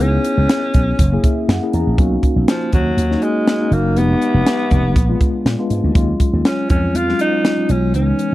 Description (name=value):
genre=polished 1980s jazz-funk pop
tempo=121 BPM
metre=4/4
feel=swing 54% on 16ths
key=unclear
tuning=A4 = 437 Hz
part: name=growling alto saxophone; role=melody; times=0.0-8.3 s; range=E#3 to E#4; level=-20 LUFS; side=equal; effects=none
part: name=mellow tine electric piano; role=accompaniment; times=0.0-8.3 s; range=E3 to A#5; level=-20 LUFS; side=left 2 dB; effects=fast stereo tremolo, lush chorus
part: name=slap bass with an envelope filter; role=bass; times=0.0-8.1 s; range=F1 to A#2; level=-17 LUFS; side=equal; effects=none
part: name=crisp fusion drum kit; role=drums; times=0.0-8.3 s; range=hi-hat, kick drum, snare drum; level=-17 LUFS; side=equal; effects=none
room=little or no reverb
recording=dry, close 1970s-style studio recording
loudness=-14 LUFS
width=side -16 dB against mid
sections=0.0-8.3 A section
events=tine electric piano fill 1.0-2.0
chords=0.0 C#m7; 1.0 F#7; 2.0 Bmaj9; 4.0 Fm7b5; 5.0 A#7b9; 6.0 D#m11